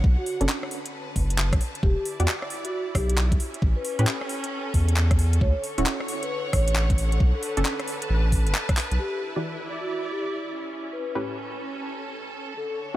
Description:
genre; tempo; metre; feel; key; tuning
UK garage, two-step garage; 134 BPM; 4/4; swing 64% on 16ths; E dorian; A4 = 439 Hz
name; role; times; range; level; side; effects
punchy chord stab; stabs; 0.0-13.0 s; A2 to D5; -33 LUFS; right 1 dB; chorus, diffuse ambient delay
saturated sub bass; bass; 0.0-9.0 s; D1 to A2; -22 LUFS; equal; tube saturation, sidechain pumping
electronic kick drum; drums; 0.0-8.8 s; none; -23 LUFS; equal; none
clear symphonic string section; texture; 0.0-13.0 s; D3 to A5; -33 LUFS; right 1 dB; sidechain pumping
vibraphone with soft mallets; melody; 0.2-12.8 s; F#4 to C#5; -33 LUFS; left 1 dB; diffuse ambient delay
garage drum kit; drums; 0.3-9.0 s; handclaps, hi-hat, rim click; -31 LUFS; equal; none
room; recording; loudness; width
light reverb, digital ambience; none; -23 LUFS; side -15 dB against mid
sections
0.0-9.0 A section; 9.0-13.0 B section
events
fade-in on string section 0.0-9.0; drum fill 8.8; filter sweep on synth stab 9.0-13.0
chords
0.0 Bm7; 1.8 Em7; 3.4 A7; 5.4 Dmaj7; 7.2 Bm7; 9.0 Em7; 10.6 A7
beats
| 0.04 0.49 0.94 1.38 | 1.83 2.28 2.73 3.17 | 3.62 4.07 4.52 4.96 | 5.41 5.86 6.31 6.76 | 7.20 7.65 8.10 8.55 | 8.99 9.44 9.89 10.34 | 10.79 11.23 11.68 12.13 | 12.58

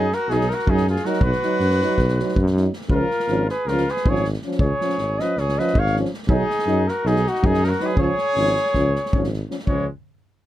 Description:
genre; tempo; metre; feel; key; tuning
balkan folk, Balkan brass band; 320 BPM (eighths); 9/8; straight; Db mixolydian; A4 = 445 Hz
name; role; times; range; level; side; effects
warm flugelhorn; melody; 0.0-9.9 s; Gb4 to F5; -23 LUFS; equal; none
clear trumpet; second line; 0.0-9.9 s; Ab3 to Db5; -29 LUFS; equal; none
mellow trombone; accompaniment; 0.0-9.9 s; Db4 to Eb4; -28 LUFS; left 6 dB; none
warm euphonium; accompaniment; 0.0-9.9 s; F3 to Gb3; -27 LUFS; right 6 dB; none
mellow tuba; bass; 0.0-9.9 s; Ab1 to Gb2; -22 LUFS; equal; none
unplugged drum kit; percussion; 0.1-9.9 s; kick drum, snare drum; -25 LUFS; equal; none
room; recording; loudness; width
little or no reverb; none; -18 LUFS; side -13 dB against mid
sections
0.0-9.7 A section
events
none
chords
0.0 Cb; 2.9 Db; 6.3 Cb; 8.0 Db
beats
0.09 0.28 0.47 0.66 0.84 1.03 | 1.22 1.41 1.59 1.78 1.97 2.16 2.35 2.53 2.72 | 2.91 3.10 3.28 3.47 3.66 3.85 4.03 4.22 4.41 | 4.60 4.79 4.97 5.16 5.35 5.54 5.72 5.91 6.10 | 6.29 6.47 6.66 6.85 7.04 7.23 7.41 7.60 7.79 | 7.98 8.16 8.35 8.54 8.73 8.92 9.10 9.29 9.48 | 9.67 9.86

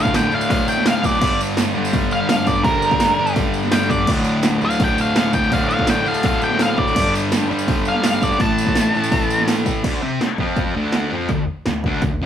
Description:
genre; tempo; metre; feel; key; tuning
garage rock duo or trio; 167 BPM; 4/4; straight; D minor; A4 = 440 Hz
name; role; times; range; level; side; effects
octave-fuzz lead guitar; melody; 0.0-9.4 s; Bb4 to A5; -20 LUFS; equal; distortion
thick fuzz guitar; riff; 0.0-12.3 s; D2 to C4; -19 LUFS; left 1 dB; distortion
punchy analog drum machine; drums; 0.1-12.1 s; crash cymbal, hi-hat, kick drum, snare drum; -21 LUFS; right 1 dB; none
tambourine; percussion; 0.1-9.8 s; none; -35 LUFS; right 7 dB; none
room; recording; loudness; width
moderate studio reverb, RT60 0.7 s; band playing live in one room; -16 LUFS; side -9 dB against mid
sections
0.0-9.8 A section; 9.8-12.3 B section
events
none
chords
0.0 D5; 1.2 Gm; 4.1 D5; 7.0 G5; 8.4 A5; 9.8 Dm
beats
0.14 0.49 0.85 | 1.21 1.57 1.93 2.29 | 2.65 3.01 3.37 3.73 | 4.08 4.44 4.80 5.16 | 5.52 5.88 6.24 6.59 | 6.95 7.31 7.67 8.03 | 8.39 8.75 9.11 9.47 | 9.84 10.20 10.56 10.93 | 11.29 11.65 12.02

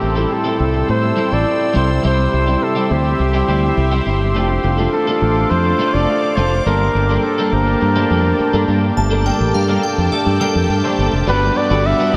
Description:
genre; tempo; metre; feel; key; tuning
pop; 104 BPM; 4/4; straight; unclear; A4 = 440 Hz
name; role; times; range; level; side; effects
trumpet with bucket mute; melody; 0.0-12.2 s; G4 to E5; -22 LUFS; equal; none
overdriven electric guitar; accompaniment; 0.0-0.2, 11.3-12.2 s; G3 to G4; -38 LUFS; equal; none
tine electric piano; accompaniment; 0.0-12.2 s; G2 to A5; -23 LUFS; equal; analog chorus
sweeping resonant pad; sustained chords; 0.0-12.2 s; G3 to E6; -26 LUFS; equal; chorus
twelve-string electric guitar; riff; 0.0-12.2 s; G3 to B4; -26 LUFS; equal; ensemble chorus, tape echo
fingered electric bass; bass; 0.0-12.2 s; F1 to A2; -20 LUFS; equal; none
shimmering bell with halo; second line; 9.0-11.2 s; D5 to A5; -28 LUFS; equal; ensemble chorus, phaser, tape echo
room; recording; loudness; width
wet huge ambient reverb, RT60 7.9 s; dreamy mix soaked in reverb; -16 LUFS; mono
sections
0.0-9.0 A section; 9.0-11.3 B section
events
tine electric piano fill 8.1-9.0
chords
0.0 Am7; 1.8 C; 4.4 F6; 6.7 Gmadd9; 11.3 Gmaj7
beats
0.31 0.89 1.47 | 2.04 2.62 3.20 3.78 | 4.35 4.93 5.51 6.08 | 6.66 7.24 7.81 8.39 | 8.97 9.54 10.12 10.70 | 11.28 11.85

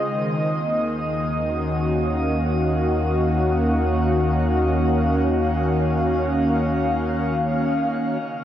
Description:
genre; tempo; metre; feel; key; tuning
ambient; free time; none; none; unclear; A4 = 440 Hz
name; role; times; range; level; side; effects
warm analog pad; sustained chords; 0.0-8.4 s; Db3 to F5; -20 LUFS; equal; chorus
round analog bass; bass; 0.0-8.4 s; Eb2; -26 LUFS; equal; tube saturation
muted felt-like synth keys; arpeggios; 8.2-8.4 s; Eb4; -44 LUFS; right 3 dB; none
room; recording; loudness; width
wet shimmer reverb, RT60 8.7 s; worn, warbling old tape, cassette tape, warbly pitch drift; -19 LUFS; side -11 dB against mid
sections
0.0-8.2 A section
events
none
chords
0.1 Ebm7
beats
free time

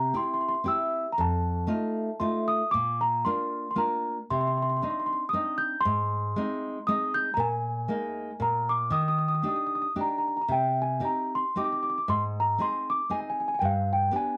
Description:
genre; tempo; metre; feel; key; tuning
italian folk; 116 BPM; 3/4; swing 55% on 8ths; Eb major, C minor from 10.5 s; A4 = 440 Hz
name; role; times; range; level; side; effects
celesta; melody; 0.0-14.4 s; F5 to G6; -29 LUFS; equal; none
nylon-string guitar; accompaniment; 0.0-14.4 s; F2 to Ab4; -33 LUFS; equal; none
room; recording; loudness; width
light reverb; dry, close 1970s-style studio recording; -28 LUFS; mono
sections
0.0-10.5 A section; 10.5-14.4 B section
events
none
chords
0.0 C; 1.2 F7; 2.7 Bb; 4.3 Cmadd9; 5.8 Ab; 7.4 Bb7sus4; 8.4 N.C.; 8.9 Ebmaj7; 10.5 Cm; 12.1 Ab; 13.6 G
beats
0.14 0.65 | 1.17 1.68 2.20 | 2.72 3.24 3.76 | 4.29 4.81 5.33 | 5.84 6.36 6.87 | 7.38 7.89 8.41 | 8.93 9.44 9.97 | 10.50 11.03 11.55 | 12.07 12.58 13.10 | 13.61 14.12

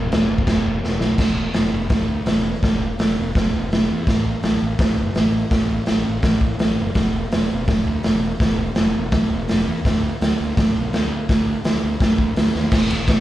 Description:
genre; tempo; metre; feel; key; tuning
garage rock duo or trio; 166 BPM; 4/4; straight; unclear; A4 = 440 Hz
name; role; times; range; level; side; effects
fuzz fingered electric bass; bass; 0.0-13.2 s; E1 to E2; -24 LUFS; equal; overdrive
raw garage drum kit; drums; 0.1-13.2 s; crash cymbal, hi-hat, kick drum, ride cymbal, snare drum; -18 LUFS; equal; none
room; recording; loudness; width
little or no reverb; live gig heard through the venue's PA, club reverb; -17 LUFS; side -14 dB against mid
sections
0.0-1.2 A section; 1.2-12.7 B section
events
drum fill 0.8-1.2, 12.5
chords
none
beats
0.12 0.48 0.84 | 1.20 1.56 1.92 2.28 | 2.64 3.00 3.37 3.73 | 4.09 4.45 4.81 5.17 | 5.53 5.89 6.25 6.61 | 6.97 7.33 7.69 8.05 | 8.41 8.77 9.13 9.49 | 9.85 10.21 10.57 10.93 | 11.29 11.65 12.01 12.37 | 12.73 13.09

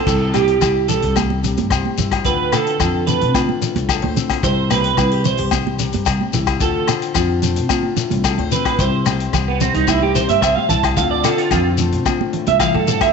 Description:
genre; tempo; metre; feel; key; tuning
highlife guitar band; 110 BPM; 4/4; straight; C major; A4 = 442 Hz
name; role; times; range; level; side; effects
fingerpicked steel-string acoustic guitar; accompaniment; 0.0-13.1 s; A2 to C5; -24 LUFS; left 10 dB; none
electric guitar through a small old amp; arpeggios; 0.0-13.1 s; B3 to A5; -19 LUFS; right 8 dB; analog chorus, slapback echo
upright bass; bass; 0.1-13.0 s; C2 to C3; -21 LUFS; equal; none
vintage drum kit; drums; 0.1-13.1 s; crash cymbal, hi-hat, kick drum, rim click; -25 LUFS; left 3 dB; none
shekere; percussion; 0.1-13.1 s; none; -25 LUFS; left 9 dB; none
agogo bells; percussion; 0.3-13.1 s; none; -25 LUFS; left 10 dB; none
congas; percussion; 0.3-13.0 s; none; -26 LUFS; right 10 dB; none
room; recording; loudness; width
moderate echo chamber reverb, RT60 1.9 s, studio ambience; 1960s-style stereo with parts hard left and right, nothing above 8.0 kHz; -15 LUFS; side -5 dB against mid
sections
0.1-13.1 A section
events
clean electric guitar solo 0.1-13.1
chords
0.1 C; 2.3 Dm7; 4.4 C; 6.6 Dm7; 8.8 C; 11.0 Dm7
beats
| 0.08 0.63 1.17 1.72 | 2.26 2.81 3.35 3.90 | 4.44 4.99 5.53 6.08 | 6.62 7.16 7.71 8.25 | 8.80 9.34 9.88 10.43 | 10.97 11.52 12.06 12.60

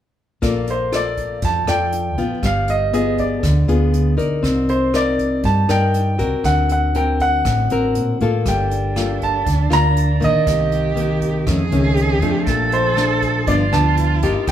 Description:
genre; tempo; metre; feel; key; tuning
bossa nova; 120 BPM; 4/4; straight; unclear; A4 = 440 Hz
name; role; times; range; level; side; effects
nylon-string guitar; accompaniment; 0.4-14.5 s; F2 to D5; -20 LUFS; left 2 dB; none
hollow-body short-scale fingered electric bass; bass; 0.4-14.5 s; G1 to Bb2; -20 LUFS; equal; none
jazz brush drum kit; drums; 0.4-14.5 s; hi-hat, kick drum, rim click; -28 LUFS; right 1 dB; none
clear grand piano; melody; 0.7-14.5 s; C5 to Bb5; -21 LUFS; right 1 dB; none
clear cello; second line; 8.5-14.5 s; D4 to A4; -23 LUFS; right 4 dB; none
room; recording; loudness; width
moderate large studio reverb, RT60 1.2 s; band playing live in one room; -15 LUFS; side -10 dB against mid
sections
0.4-14.5 A section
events
none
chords
0.4 Bbmaj7; 2.4 G7b9; 4.4 Cm9; 6.4 D7b13; 8.5 Gm9; 10.5 Cm7; 11.5 F7alt; 12.5 Bbmaj7; 13.5 G7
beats
| 0.43 0.93 1.43 1.93 | 2.43 2.93 3.43 3.94 | 4.44 4.94 5.44 5.94 | 6.45 6.95 7.45 7.95 | 8.45 8.96 9.46 9.96 | 10.46 10.96 11.47 11.97 | 12.47 12.97 13.47 13.98 | 14.48

